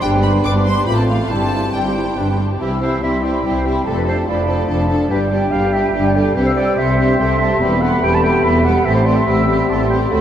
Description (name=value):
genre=quick classical-period movement for symphony orchestra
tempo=143 BPM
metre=3/4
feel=straight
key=C major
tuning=A4 = 440 Hz
part: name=clear studio violin section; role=melody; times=0.0-10.2 s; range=F#4 to D6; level=-26 LUFS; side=equal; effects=none
part: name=large flute ensemble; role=second line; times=0.0-10.2 s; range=F5 to E6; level=-24 LUFS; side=equal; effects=none
part: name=rich studio violin section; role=second line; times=0.0-10.2 s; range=B3 to D5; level=-25 LUFS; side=left 2 dB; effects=none
part: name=warm clarinet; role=second line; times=0.0-10.2 s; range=D4 to A5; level=-22 LUFS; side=right 2 dB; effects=none
part: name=warm oboe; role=second line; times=0.0-10.2 s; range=B4 to B5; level=-28 LUFS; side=right 3 dB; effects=none
part: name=rich studio viola section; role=accompaniment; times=0.0-10.2 s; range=G3 to A4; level=-25 LUFS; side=right 2 dB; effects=none
part: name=warm bassoon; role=accompaniment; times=0.0-10.2 s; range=E3 to A3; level=-25 LUFS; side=left 3 dB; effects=none
part: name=warm French horn section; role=sustained chords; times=0.0-10.2 s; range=B3 to G4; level=-22 LUFS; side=equal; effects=none
part: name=rich studio cello section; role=bass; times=0.0-10.2 s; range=C2 to C3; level=-22 LUFS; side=equal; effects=none
part: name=rich studio double bass section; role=bass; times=0.0-10.2 s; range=E1 to D2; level=-21 LUFS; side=equal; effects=none
room=wet huge ambient reverb, RT60 8.1 s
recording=in a vast, echoing space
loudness=-14 LUFS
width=side -10 dB against mid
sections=0.0-2.6 A section; 2.6-10.2 B section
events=none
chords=0.0 G; 0.9 F/A; 1.3 C/G; 2.2 G; 2.6 C; 3.9 Dm/F; 5.1 G5; 6.4 C; 7.6 Em; 8.9 Am7